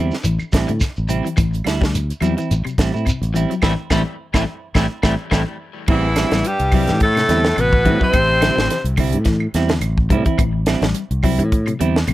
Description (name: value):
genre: afrobeat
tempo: 106 BPM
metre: 4/4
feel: swing 55% on 16ths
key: A minor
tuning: A4 = 438 Hz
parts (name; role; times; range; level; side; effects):
- electric guitar at the edge of break-up; arpeggios; 0.0-12.1 s; C3 to A3; -24 LUFS; left 5 dB; wide subtle chorus, tape echo
- semi-hollow electric guitar; stabs; 0.0-12.0 s; G3 to E4; -24 LUFS; right 6 dB; spring reverb
- fingered electric bass; bass; 0.0-12.1 s; A1 to A2; -20 LUFS; equal; none
- tight funk drum kit; drums; 0.1-12.1 s; crash cymbal, hi-hat, kick drum, snare drum; -20 LUFS; equal; none
- shekere; percussion; 0.1-5.5 s; none; -26 LUFS; right 1 dB; none
- claves; percussion; 0.4-12.1 s; none; -30 LUFS; right 4 dB; none
- bright alto saxophone; melody; 5.9-8.8 s; E4 to C5; -18 LUFS; equal; none
- bright tenor saxophone; second line; 5.9-8.8 s; E3 to C4; -25 LUFS; right 2 dB; none
- raspy baritone saxophone; second line; 5.9-8.8 s; E2 to C3; -27 LUFS; left 5 dB; tape echo
room: little or no reverb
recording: none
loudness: -15 LUFS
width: side -16 dB against mid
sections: 0.0-5.9 A section; 5.9-12.1 B section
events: band accent 3.6-5.9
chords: 0.0 Am7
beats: 0.25 0.81 | 1.38 1.94 2.50 3.07 | 3.63 4.20 4.76 5.33 | 5.89 6.45 7.01 7.58 | 8.14 8.71 9.27 9.83 | 10.40 10.96 11.52 12.09